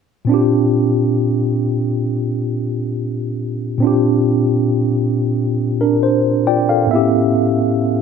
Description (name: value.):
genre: R&B.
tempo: 68 BPM.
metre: 4/4.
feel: straight.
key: Bb major.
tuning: A4 = 440 Hz.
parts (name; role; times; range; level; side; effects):
mellow tine electric piano; accompaniment; 0.2-8.0 s; A2 to G5; -14 LUFS; equal; medium stereo tremolo.
room: moderate plate reverb, RT60 2.6 s.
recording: none.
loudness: -14 LUFS.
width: side -6 dB against mid.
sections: 0.3-8.0 A section.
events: tine electric piano fill 6.0-7.3.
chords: 0.3 Bb69; 6.9 A9.